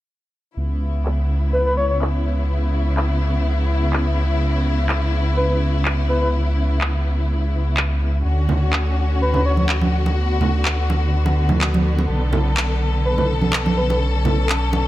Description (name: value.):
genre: breakbeat, breaks.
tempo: 125 BPM.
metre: 4/4.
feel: straight.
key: C# phrygian.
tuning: A4 = 445 Hz.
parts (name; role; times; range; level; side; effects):
warm symphonic string section; sustained chords; 0.6-14.9 s; C#3 to A4; -24 LUFS; left 1 dB; none.
dark detuned saw bass; bass; 0.6-14.9 s; B1 to D2; -19 LUFS; equal; none.
electronic handclaps; drums; 1.1-14.6 s; none; -25 LUFS; equal; low-pass filter on snare.
breathy flute-like synth lead; melody; 1.5-2.0, 5.4-6.3, 9.2-9.7, 13.1-14.0 s; B4 to C#5; -25 LUFS; left 1 dB; chorus, old record sound, dub echo.
congas; percussion; 8.5-14.8 s; none; -22 LUFS; right 3 dB; none.
room: small room ambience.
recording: none.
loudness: -17 LUFS.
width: side -15 dB against mid.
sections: 0.6-14.9 A section.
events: filter sweep on drum 0.6-14.9.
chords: 0.6 C#m7; 8.3 Dmaj7; 12.1 Bm7.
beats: | 0.57 1.05 1.53 2.01 | 2.49 2.97 3.45 3.93 | 4.41 4.89 5.37 5.85 | 6.33 6.81 7.29 7.77 | 8.25 8.73 9.21 9.69 | 10.17 10.65 11.13 11.61 | 12.09 12.57 13.05 13.53 | 14.01 14.49.